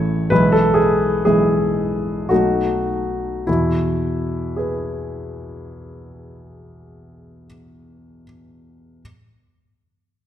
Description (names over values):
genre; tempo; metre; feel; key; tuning
classical, romantic character piece for solo piano; 48-68 BPM; 3/4; rubato; E major; A4 = 440 Hz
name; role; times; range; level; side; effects
warm baby grand piano; solo; 0.0-9.0 s; A1 to C#5; -17 LUFS; equal; none
room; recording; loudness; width
wet recital hall reverb, RT60 1.7 s; none; -16 LUFS; side -10 dB against mid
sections
0.0-3.5 A section; 3.5-6.8 B section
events
slowing down 0.0-3.5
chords
0.3 E/B; 2.3 B7; 3.5 E